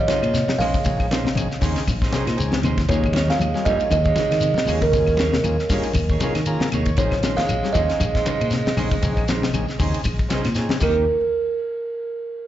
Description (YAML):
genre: afrobeat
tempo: 117 BPM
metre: 4/4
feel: swing 55% on 16ths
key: Eb mixolydian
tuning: A4 = 440 Hz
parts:
  - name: kalimba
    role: melody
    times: 0.0-11.1 s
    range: Bb4 to F5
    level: -23 LUFS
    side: right 3 dB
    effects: slapback echo, tape echo
  - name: raspy tenor saxophone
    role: second line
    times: 0.0-11.1 s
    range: Db3 to Ab3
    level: -32 LUFS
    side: right 2 dB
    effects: plate reverb, slapback echo
  - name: semi-hollow electric guitar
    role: arpeggios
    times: 0.0-11.0 s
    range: C3 to G3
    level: -29 LUFS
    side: left 6 dB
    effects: slapback echo
  - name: fingered electric bass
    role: bass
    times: 0.0-11.1 s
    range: Bb1 to Eb3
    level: -24 LUFS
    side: equal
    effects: none
  - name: clean electric guitar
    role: stabs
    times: 0.1-11.0 s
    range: Bb3 to Db5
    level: -30 LUFS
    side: right 7 dB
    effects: plate reverb, slapback echo
  - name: tight funk drum kit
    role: drums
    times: 0.1-10.9 s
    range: crash cymbal, hi-hat, kick drum, ride cymbal, snare drum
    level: -24 LUFS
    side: left 1 dB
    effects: none
  - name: congas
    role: percussion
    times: 0.1-10.9 s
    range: none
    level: -28 LUFS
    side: equal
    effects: none
  - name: shekere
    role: percussion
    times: 0.1-10.9 s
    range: none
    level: -31 LUFS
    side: left 3 dB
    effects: none
  - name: claves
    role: percussion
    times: 0.2-11.0 s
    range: none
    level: -37 LUFS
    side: left 4 dB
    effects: slapback echo
  - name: combo organ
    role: accompaniment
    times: 0.6-11.0 s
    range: G3 to Bb5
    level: -31 LUFS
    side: left 3 dB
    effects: plate reverb, slapback echo
room: light reverb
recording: live gig heard through the venue's PA, club reverb, nothing above 7.7 kHz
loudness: -18 LUFS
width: side -12 dB against mid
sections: 0.0-11.1 A section; 11.1-12.5 B section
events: transistor combo organ fill 6.2-7.0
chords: 0.0 Bbm11; 2.9 Eb7sus4; 7.0 Bbm11; 10.8 Eb; 11.1 N.C.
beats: 0.34 | 0.85 1.36 1.87 2.38 | 2.89 3.40 3.91 4.42 | 4.93 5.45 5.96 6.47 | 6.98 7.49 8.00 8.51 | 9.02 9.54 10.05 10.56